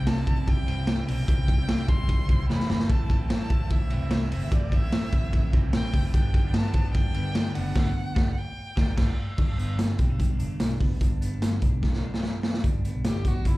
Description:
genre	jangly indie pop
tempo	148 BPM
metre	4/4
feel	straight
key	G major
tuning	A4 = 444 Hz
part	warm violin	melody	0.0-9.2, 13.1-13.6 s	E4 to C6	-37 LUFS	left 1 dB	slapback echo, tape echo
part	crunchy overdriven guitar	accompaniment	0.0-9.1 s	G2 to E4	-39 LUFS	right 6 dB	slapback echo
part	twelve-string electric guitar	arpeggios	0.0-13.6 s	G2 to E4	-33 LUFS	left 1 dB	slapback echo
part	vintage muted fingered electric bass	bass	0.0-13.5 s	F#1 to G2	-28 LUFS	equal	none
part	raw garage drum kit	drums	0.1-13.5 s	crash cymbal, hi-hat, kick drum, ride cymbal, snare drum	-24 LUFS	equal	none
room	little or no reverb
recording	live gig heard through the venue's PA, club reverb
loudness	-22 LUFS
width	side -19 dB against mid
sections	0.0-9.4 A section; 9.4-12.6 B section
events	drum fill 2.5-2.9, 11.8-12.6; band accent 7.8-9.4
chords	0.0 C; 2.9 Am; 6.1 G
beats	0.07 0.47 0.88 | 1.28 1.69 2.09 2.50 | 2.90 3.31 3.71 4.12 | 4.52 4.93 5.33 5.74 | 6.14 6.54 6.95 7.36 | 7.76 8.17 8.57 8.98 | 9.38 9.79 10.20 10.60 | 11.01 11.41 11.82 12.23 | 12.64 13.04 13.45

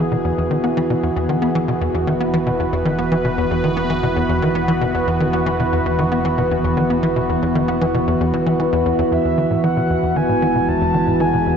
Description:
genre	ambient, sequencer-driven space music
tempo	115 BPM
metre	4/4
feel	straight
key	E major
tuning	A4 = 440 Hz
part	sweeping resonant pad	sustained chords	0.0-11.6 s	E3 to B4	-18 LUFS	equal	chorus, shimmer reverb
part	tight sequencer bass	riff	0.0-11.5 s	E2 to B3	-21 LUFS	left 1 dB	analog chorus, ping-pong delay
part	fat analog bass	bass	0.0-11.6 s	E1	-31 LUFS	equal	none
part	breathy flute-like synth lead	melody	9.1-11.6 s	E5 to A5	-21 LUFS	right 1 dB	wide subtle chorus, shimmer reverb, ping-pong delay
room	wet cathedral reverb, RT60 6.9 s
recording	in a vast, echoing space, nothing above 7.9 kHz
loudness	-16 LUFS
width	side -7 dB against mid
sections	0.0-11.6 A section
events	fade-in on analog synth bass 0.0-11.6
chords	0.0 E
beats	0.25 | 0.77 1.29 1.81 2.33 | 2.85 3.38 3.90 4.42 | 4.94 5.46 5.99 6.51 | 7.03 7.55 8.07 8.59 | 9.12 9.64 10.16 10.68 | 11.20

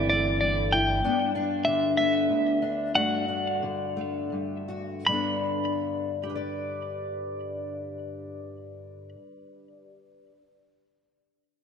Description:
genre	folk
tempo	52-65 BPM (dotted quarters)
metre	6/8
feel	straight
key	G major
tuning	A4 = 440 Hz
part	clean electric guitar	melody	0.0-9.1 s	D5 to B5	-26 LUFS	equal	harmonic tremolo, ping-pong delay
part	fingerpicked steel-string acoustic guitar	accompaniment	0.0-10.4 s	D2 to D5	-29 LUFS	left 2 dB	lush chorus
part	upright bass	bass	0.0-1.0 s	G1	-30 LUFS	equal	none
room	moderate lush hall reverb, RT60 2.5 s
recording	bright 1980s-style digital production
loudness	-25 LUFS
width	side -7 dB against mid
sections	0.0-5.1 A section; 5.1-9.7 B section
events	slowing down 1.0-5.1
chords	0.0 Am/G; 1.0 G; 2.9 D/G; 5.1 G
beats	0.11 | 1.03 1.97 | 2.94 3.97 | 5.08 6.24 | 7.40 8.56

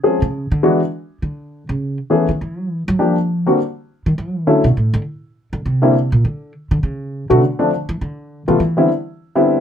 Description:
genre	jazz piano trio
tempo	203 BPM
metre	4/4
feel	swing 60% on 8ths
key	unclear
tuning	A4 = 440 Hz
part	warm upright piano	melody	0.0-9.6 s	D3 to Ab4	-14 LUFS	left 2 dB	none
part	upright bass	bass	0.2-8.9 s	A2 to F#3	-18 LUFS	right 1 dB	none
room	light reverb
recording	none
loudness	-15 LUFS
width	side -9 dB against mid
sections	0.0-1.8 A section; 1.8-9.6 A section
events	upright bass solo 0.0-9.6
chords	0.0 Dbmaj7; 1.8 A (rootless); 3.0 Gm7; 3.6 N.C.; 4.2 Dadd9; 5.3 Csus2; 6.5 N.C.; 7.7 Dsus2; 8.3 G6; 8.9 Cmaj9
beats	0.04 0.33 | 0.63 0.92 1.22 1.51 | 1.81 2.10 2.40 2.69 | 2.99 3.28 3.58 3.87 | 4.17 4.46 4.76 5.05 | 5.35 5.64 5.94 6.23 | 6.53 6.82 7.12 7.41 | 7.71 8.00 8.30 8.59 | 8.89 9.18 9.48

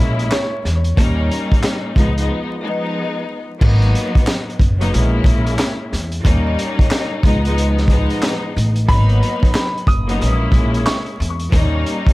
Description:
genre	hip hop, boom-bap hip-hop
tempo	91 BPM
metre	4/4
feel	swing 62% on 16ths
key	G# minor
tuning	A4 = 440 Hz
part	clear upright piano	melody	0.0-0.6, 8.9-11.2 s	C#5 to D#6	-25 LUFS	right 1 dB	high-pass filter, low-pass filter, ping-pong delay
part	warm studio string section	accompaniment	0.0-12.1 s	E#3 to E4	-21 LUFS	left 1 dB	cassette tape, high-pass filter, low-pass filter
part	upright bass	bass	0.0-11.8 s	F#1 to E2	-17 LUFS	equal	none
part	crunchy breakbeat drum kit	drums	0.2-12.1 s	crash cymbal, handclaps, hi-hat, kick drum, snare drum	-17 LUFS	equal	none
room	little or no reverb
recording	vinyl crackle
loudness	-14 LUFS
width	side -19 dB against mid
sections	0.0-3.6 A section; 3.6-12.1 B section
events	break 2.3-3.6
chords	0.0 A#m7b5; 1.0 D#7; 2.0 C#7; 3.6 G#m7; 4.9 A#m7b5; 6.2 D#7; 7.2 C#7; 8.9 G#m7; 10.2 A#m7b5; 11.5 D#7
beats	0.32 | 0.97 1.63 2.29 2.95 | 3.61 4.27 4.93 5.59 | 6.25 6.91 7.57 8.23 | 8.89 9.55 10.21 10.86 | 11.52

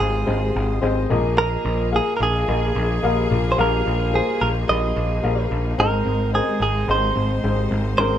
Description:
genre	pop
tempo	109 BPM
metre	4/4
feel	straight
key	unclear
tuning	A4 = 440 Hz
part	direct-recorded clean electric guitar	melody	0.0-8.2 s	Ab4 to Eb5	-22 LUFS	right 3 dB	none
part	warm upright piano	accompaniment	0.0-8.2 s	Ab2 to F5	-24 LUFS	left 4 dB	none
part	bright studio string section	sustained chords	0.0-8.2 s	Ab3 to C5	-31 LUFS	equal	none
part	overdriven picked electric bass	bass	0.0-8.2 s	Ab1 to Bb1	-23 LUFS	equal	none
room	moderate small room reverb, RT60 0.5 s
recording	band playing live in one room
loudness	-18 LUFS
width	side -10 dB against mid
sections	0.0-8.2 A section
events	none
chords	0.0 Ab; 1.1 Ebsus4/Bb; 5.8 Ab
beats	0.28 0.83 | 1.38 1.93 2.48 3.03 | 3.58 4.13 4.68 5.23 | 5.78 6.33 6.88 7.43 | 7.98

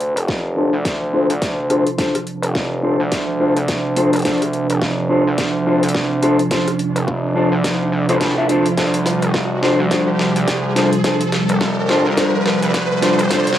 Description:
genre	glitch hop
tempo	106 BPM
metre	4/4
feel	swing 59% on 16ths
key	D minor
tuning	A4 = 440 Hz
part	warbly tape-like pad	sustained chords	0.0-13.6 s	C3 to D4	-21 LUFS	right 2 dB	chorus, built-in reverb, vintage 12-bit sampler grit, sidechain pumping, cassette tape
part	gritty driven synth bass	bass	0.0-13.6 s	F1 to D2	-21 LUFS	equal	tube saturation, high-pass filter
part	dubstep drum kit	drums	0.0-13.6 s	hi-hat, rim click, snare drum	-24 LUFS	equal	overdrive, high-pass filter on hats, cassette tape, high-pass filter on snare, high-pass filter on room
part	riser	sound effects	2.4-13.6 s	none	-25 LUFS	right 2 dB	none
part	electronic kick drum	drums	0.3-13.4 s	none	-24 LUFS	equal	overdrive, high-pass filter on kick, cassette tape, high-pass filter on room
part	mellow electric guitar	stabs	0.6-13.5 s	D4 to E5	-19 LUFS	left 1 dB	sidechain pumping, low-pass filter, cassette tape, analog delay
room	light reverb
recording	home recording on cassette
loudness	-15 LUFS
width	side -11 dB against mid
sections	0.0-13.6 A section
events	build-up 0.0-13.6; drum fill 0.0-13.6; filter sweep on clean electric guitar 0.0-13.6; riser 2.4-13.6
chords	0.0 Dm7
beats	0.29 0.85 1.42 | 1.99 2.55 3.12 3.69 | 4.25 4.82 5.38 5.95 | 6.51 7.08 7.65 8.21 | 8.78 9.35 9.91 10.48 | 11.04 11.61 12.18 12.74 | 13.31

